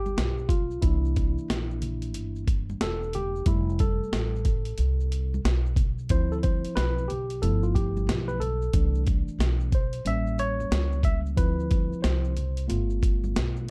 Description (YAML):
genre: hip hop, jazz-hop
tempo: 91 BPM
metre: 4/4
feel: swing 64% on 16ths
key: C major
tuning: A4 = 440 Hz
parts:
  - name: barky tine electric piano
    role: accompaniment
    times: 0.0-13.7 s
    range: E3 to E5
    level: -34 LUFS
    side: equal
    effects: none
  - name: upright bass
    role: bass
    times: 0.0-13.7 s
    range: E1 to D2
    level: -30 LUFS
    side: equal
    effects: none
  - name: congas and maracas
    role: percussion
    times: 0.1-13.7 s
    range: none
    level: -44 LUFS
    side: equal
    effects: none
  - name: boom bap sampler-style drum kit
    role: drums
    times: 0.2-13.6 s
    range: hi-hat, kick drum, snare drum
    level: -28 LUFS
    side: equal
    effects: none
room: little or no reverb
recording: dark, warm production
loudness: -26 LUFS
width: mono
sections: 0.0-13.7 A section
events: tine electric piano solo 0.0-13.7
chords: 0.0 Cmaj7(no3) (rootless); 0.8 C9; 3.5 Fmaj9; 6.1 Dm9; 7.4 G13; 8.7 C6; 10.1 A7b9; 11.4 Dm7; 12.7 G9